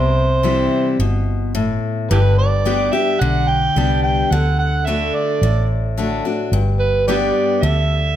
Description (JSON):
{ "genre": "honky-tonk and classic country", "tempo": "108 BPM", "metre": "4/4", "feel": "straight", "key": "G major", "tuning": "A4 = 440 Hz", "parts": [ { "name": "overdriven harmonica", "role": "second line", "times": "0.0-8.2 s", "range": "E4 to G5", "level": "-20 LUFS", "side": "right 4 dB", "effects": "none" }, { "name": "picked steel-string acoustic guitar", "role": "accompaniment", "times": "0.0-8.2 s", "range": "G2 to G4", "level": "-20 LUFS", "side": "left 4 dB", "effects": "none" }, { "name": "vintage muted fingered electric bass", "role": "bass", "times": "0.0-8.2 s", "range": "G1 to D2", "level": "-18 LUFS", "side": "equal", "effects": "none" } ], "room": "light reverb", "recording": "close, detailed microphones", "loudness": "-15 LUFS", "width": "side -11 dB against mid", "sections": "0.0-8.2 A section", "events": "harmonica solo 0.0-8.2", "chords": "0.0 C; 2.1 G; 4.3 D; 6.5 G" }